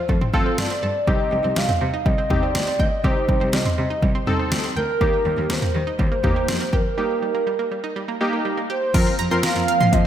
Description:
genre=synth-pop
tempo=122 BPM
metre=4/4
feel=straight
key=F mixolydian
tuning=A4 = 440 Hz
part: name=hollow clarinet-like synth lead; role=melody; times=0.0-10.1 s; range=Bb4 to F5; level=-24 LUFS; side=right 2 dB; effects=chorus, tape echo
part: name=analog pluck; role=arpeggios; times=0.0-10.0 s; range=F3 to C6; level=-30 LUFS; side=right 4 dB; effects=chorus, tape echo, slapback echo
part: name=rich cello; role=bass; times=0.1-10.0 s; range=C2 to F3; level=-26 LUFS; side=equal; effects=none
part: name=deep house drum kit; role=drums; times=0.1-10.0 s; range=crash cymbal, hi-hat, kick drum, snare drum, toms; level=-22 LUFS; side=equal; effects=none
part: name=warm analog keys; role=accompaniment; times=0.3-9.8 s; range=Bb3 to Bb4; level=-26 LUFS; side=left 1 dB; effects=chorus
part: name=phased analog pad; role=sustained chords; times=9.2-10.1 s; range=F3 to C4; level=-28 LUFS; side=left 2 dB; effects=phaser, chorus
room=moderate lush hall reverb, RT60 1.8 s, digital ambience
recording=big arena sound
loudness=-18 LUFS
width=side -10 dB against mid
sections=0.0-8.9 A section; 8.9-10.1 B section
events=break 7.0-8.9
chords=0.0 Fadd9; 1.1 Cm; 5.0 Eb; 8.9 Fsus4

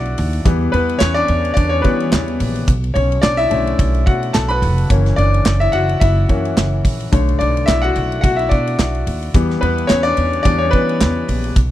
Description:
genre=piano-driven pop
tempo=108 BPM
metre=4/4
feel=swing 56% on 16ths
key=B minor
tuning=A4 = 440 Hz
part: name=clear concert grand piano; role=accompaniment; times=0.0-11.6 s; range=D3 to B5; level=-17 LUFS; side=left 2 dB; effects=none
part: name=upright bass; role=bass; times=0.0-11.7 s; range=E#1 to E3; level=-18 LUFS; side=right 1 dB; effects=none
part: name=modern studio drum kit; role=drums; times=0.1-11.7 s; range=handclaps, hi-hat, kick drum, ride cymbal, snare drum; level=-17 LUFS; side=right 1 dB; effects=none
room=little or no reverb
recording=dry, close 1970s-style studio recording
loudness=-14 LUFS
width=side -13 dB against mid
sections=0.0-11.7 A section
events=grand piano solo 0.0-11.7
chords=0.5 Em; 2.7 Bm7; 4.9 F#7; 7.1 Bm7; 9.3 Em

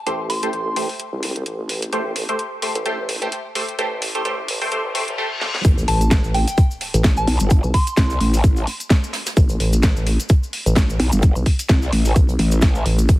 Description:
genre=bass house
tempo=129 BPM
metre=4/4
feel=swing 56% on 16ths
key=A minor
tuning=A4 = 440 Hz
part: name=band-passed chord stab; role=stabs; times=0.1-5.5 s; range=A3 to C5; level=-24 LUFS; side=equal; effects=phaser, sidechain pumping, ping-pong delay
part: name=vowel-sweep wobble bass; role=bass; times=0.1-13.2 s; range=F1 to C2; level=-21 LUFS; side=equal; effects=chorus, sidechain pumping, high-pass filter
part: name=garage drum kit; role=drums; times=0.1-13.2 s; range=hi-hat, snare drum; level=-24 LUFS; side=equal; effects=none
part: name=soft synth bell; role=melody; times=0.3-0.8, 5.9-8.2 s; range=G5 to C6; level=-26 LUFS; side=equal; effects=chorus, ping-pong delay
part: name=reverse cymbal and sub drop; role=sound effects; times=4.9-7.5 s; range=none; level=-30 LUFS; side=left 2 dB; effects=none
part: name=electronic kick drum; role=drums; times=5.6-13.2 s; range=none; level=-14 LUFS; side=equal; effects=none
part: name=soft brush drum kit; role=drums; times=5.6-13.2 s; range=hi-hat, snare drum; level=-34 LUFS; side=right 3 dB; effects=none
part: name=cabasa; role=percussion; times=5.6-13.2 s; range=none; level=-32 LUFS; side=left 2 dB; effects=none
part: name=growl bass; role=bass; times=7.3-12.8 s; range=G1 to C2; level=-18 LUFS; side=equal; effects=chorus, tube saturation, sidechain pumping
room=light reverb, digital ambience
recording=heavily compressed radio sound, multiband compression, high-pass filter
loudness=-16 LUFS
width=side -17 dB against mid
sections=0.0-5.6 A section; 5.6-13.2 B section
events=build-up 0.0-5.6; filter sweep 0.0-5.6; reverse cymbal 4.9-5.6; drum fill 5.4; drop 5.6-13.2; impact 5.6-7.5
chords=0.0 Am7; 5.6 N.C.

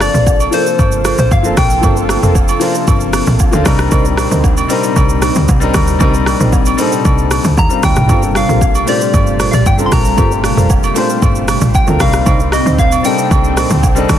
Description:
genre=amapiano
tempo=115 BPM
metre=4/4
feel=straight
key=G minor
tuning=A4 = 435 Hz
part: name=soft struck synth lead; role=melody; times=0.0-2.4, 7.6-14.2 s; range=C5 to C6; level=-18 LUFS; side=left 2 dB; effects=chorus, digital delay
part: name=warm grand piano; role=accompaniment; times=0.0-14.2 s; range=F3 to C5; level=-18 LUFS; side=left 6 dB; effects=none
part: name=lush unison pad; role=sustained chords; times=0.0-14.2 s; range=Bb2 to A4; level=-20 LUFS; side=right 1 dB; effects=chorus, sidechain pumping
part: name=woody log drum bass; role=bass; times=0.0-14.2 s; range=F1 to Eb2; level=-15 LUFS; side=equal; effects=none
part: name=afro-pop drum kit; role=drums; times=0.0-14.2 s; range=hi-hat, kick drum, rim click, shaker, toms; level=-15 LUFS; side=equal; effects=soft clipping on snare
part: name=agogo bells and woodblock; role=percussion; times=0.0-14.2 s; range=none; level=-22 LUFS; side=right 5 dB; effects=none
part: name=mellow tonewheel organ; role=stabs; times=0.1-14.1 s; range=Eb4 to C5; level=-22 LUFS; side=right 5 dB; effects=slow rotary speaker, digital delay
room=light reverb, digital ambience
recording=dense, heavily limited modern master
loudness=-10 LUFS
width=side -10 dB against mid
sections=0.0-14.2 A section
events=none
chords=0.0 Gm11; 3.7 Cm7; 8.1 Gm11; 12.0 Cm7

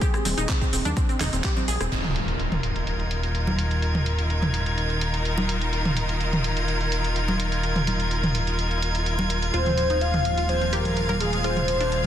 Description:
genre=progressive house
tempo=126 BPM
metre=4/4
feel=straight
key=unclear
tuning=A4 = 439 Hz
part: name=soft octave-layered synth lead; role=melody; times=0.0-1.4, 9.5-12.1 s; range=Ab4 to F5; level=-28 LUFS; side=left 1 dB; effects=chorus, sidechain pumping, dub echo
part: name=wide unison pluck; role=arpeggios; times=0.0-1.9, 9.5-12.0 s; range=F3 to Bb4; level=-30 LUFS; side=right 1 dB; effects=sidechain pumping, dub echo
part: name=electronic kick drum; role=drums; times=0.0-1.5 s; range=none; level=-24 LUFS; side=equal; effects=studio reverb
part: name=pop drum kit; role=drums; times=0.0-12.0 s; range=crash cymbal, handclaps, hi-hat, rim click, shaker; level=-33 LUFS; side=right 1 dB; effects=sidechain pumping on hats, low-pass filter on hats, studio reverb, sidechain pumping on perc, low-pass filter on perc, soft clipping on snare, low-pass filter on snare, sidechain pumping on cymbals, low-pass filter on cymbals
part: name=fat analog bass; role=bass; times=0.3-12.1 s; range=Eb1 to Eb2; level=-26 LUFS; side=equal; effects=tube saturation, sidechain pumping
part: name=electronic congas and toms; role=percussion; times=0.3-12.1 s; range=none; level=-29 LUFS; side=right 1 dB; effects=sidechain pumping on toms, studio reverb, sidechain pumping on perc
part: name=clear studio string section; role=sustained chords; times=1.9-12.1 s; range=Eb3 to F5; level=-28 LUFS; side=left 1 dB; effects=sidechain pumping
part: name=impact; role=sound effects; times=1.9-3.8 s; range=none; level=-30 LUFS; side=equal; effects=none
part: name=drifting glass-harmonics texture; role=texture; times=2.5-12.1 s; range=Ab6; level=-33 LUFS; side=right 2 dB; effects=chorus, built-in reverb, sidechain pumping
part: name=soft supersaw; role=second line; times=9.5-12.1 s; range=Ab4 to F5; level=-32 LUFS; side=left 1 dB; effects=sidechain pumping, dub echo
room=light reverb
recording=dense, heavily limited modern master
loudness=-22 LUFS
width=side -10 dB against mid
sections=0.0-1.9 A section; 1.9-12.1 B section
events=impact 1.9-3.8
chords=0.0 Fm/Eb (rootless); 1.9 Ebsus2; 9.5 Fm/Eb

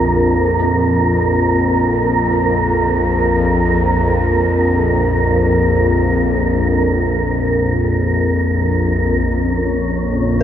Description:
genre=dark ambient drone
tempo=free time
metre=none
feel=none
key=Bb minor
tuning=A4 = 440 Hz
part: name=dark detuned synth bell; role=arpeggios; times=0.0-10.4 s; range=C4 to F4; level=-26 LUFS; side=right 1 dB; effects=none
part: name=bowed-like drone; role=drone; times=0.0-10.4 s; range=Bb1 to F2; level=-15 LUFS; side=left 1 dB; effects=built-in reverb
part: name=wind-like tuned noise texture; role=texture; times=0.0-10.4 s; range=Db4 to Bb4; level=-18 LUFS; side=right 2 dB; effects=built-in reverb
part: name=deep dark ambient pad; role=sustained chords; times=9.8-10.4 s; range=Bb3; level=-24 LUFS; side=right 1 dB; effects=chorus, built-in reverb
room=wet huge ambient reverb, RT60 8.4 s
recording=none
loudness=-13 LUFS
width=side -10 dB against mid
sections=0.0-9.3 A section; 9.3-10.4 B section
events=none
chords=0.0 Bbsus2; 9.3 Bbm

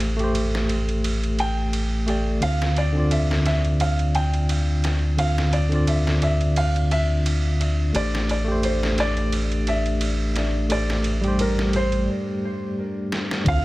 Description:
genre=trip hop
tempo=87 BPM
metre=4/4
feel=swing 55% on 16ths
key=unclear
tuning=A4 = 440 Hz
part: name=tine electric piano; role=accompaniment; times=0.0-13.6 s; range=D3 to F5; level=-24 LUFS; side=equal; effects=overdrive, tremolo
part: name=deep dark ambient pad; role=sustained chords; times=3.9-13.6 s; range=G4 to D5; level=-37 LUFS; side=left 4 dB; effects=none
part: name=round analog bass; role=bass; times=0.0-13.6 s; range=A1 to D2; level=-23 LUFS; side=equal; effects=none
part: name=trip hop sampler-style drum kit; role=drums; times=0.0-13.6 s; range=kick drum, ride cymbal, snare drum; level=-30 LUFS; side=right 1 dB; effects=high-pass filter on cymbals, high-pass filter on snare, high-pass filter on kick
part: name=felt-muted upright piano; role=melody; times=1.4-13.6 s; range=Bb4 to G5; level=-28 LUFS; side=equal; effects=vintage 12-bit sampler grit, tape echo
room=light reverb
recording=none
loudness=-20 LUFS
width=side -19 dB against mid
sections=0.0-13.5 A section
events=break 12.1-13.5; drum fill 13.1-13.5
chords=0.0 Am7; 2.4 Dm9; 7.9 Am7

